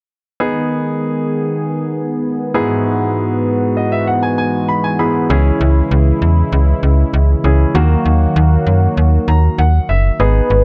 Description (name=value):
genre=synth-pop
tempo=98 BPM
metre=4/4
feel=straight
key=G# minor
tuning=A4 = 440 Hz
part: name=clear baby grand piano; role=accompaniment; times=0.4-10.6 s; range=G#2 to B5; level=-22 LUFS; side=equal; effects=none
part: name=warm analog pad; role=sustained chords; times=0.4-10.2 s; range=G#2 to G#4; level=-20 LUFS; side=equal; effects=chorus
part: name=slap-like FM bass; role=bass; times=5.3-10.6 s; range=F#1 to F#2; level=-14 LUFS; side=equal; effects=none
part: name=warm velvety synth lead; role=melody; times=10.2-10.6 s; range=B4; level=-17 LUFS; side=equal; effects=chorus
room=little or no reverb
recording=dark, warm production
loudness=-15 LUFS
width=mono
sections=0.4-10.2 A section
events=grand piano fill 3.5-5.3, 9.0-10.2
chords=0.4 G#m; 2.5 Eadd9/G#; 5.3 C#m; 7.7 D#m